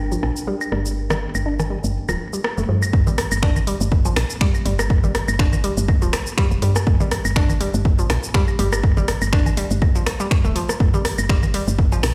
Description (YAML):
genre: minimal techno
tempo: 122 BPM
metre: 4/4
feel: swing 55% on 16ths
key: G minor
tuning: A4 = 441 Hz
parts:
  - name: woody FM bass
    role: bass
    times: 0.0-12.1 s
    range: D1 to G2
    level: -24 LUFS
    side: equal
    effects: sidechain pumping
  - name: warbly tape-like pad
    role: texture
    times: 0.0-2.9 s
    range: D4 to G5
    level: -35 LUFS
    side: equal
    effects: chorus, built-in reverb, sidechain pumping
  - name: hollow square pluck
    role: riff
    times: 0.1-11.9 s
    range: F3 to D4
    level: -30 LUFS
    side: equal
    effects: chorus, phaser, sidechain pumping, tape echo
  - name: house drum kit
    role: drums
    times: 0.1-12.1 s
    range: finger snaps, hi-hat, shaker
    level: -30 LUFS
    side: equal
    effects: overdrive
  - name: electronic rim click, woodblock, claves and congas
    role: percussion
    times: 0.2-12.1 s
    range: none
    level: -28 LUFS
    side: equal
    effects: overdrive, delay
  - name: electronic kick drum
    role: drums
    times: 2.9-11.9 s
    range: none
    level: -20 LUFS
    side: equal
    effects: overdrive
room: little or no reverb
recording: played on a big sound system in a bare room, large studio reverb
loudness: -20 LUFS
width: mono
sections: 0.0-2.9 A section; 2.9-12.1 B section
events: drop 2.9-12.1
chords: 0.0 Gm; 2.9 N.C.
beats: 0.47 | 0.97 1.46 1.95 2.44 | 2.93 3.43 3.92 4.41 | 4.90 5.39 5.88 6.38 | 6.87 7.36 7.85 8.34 | 8.84 9.33 9.82 10.31 | 10.80 11.29 11.79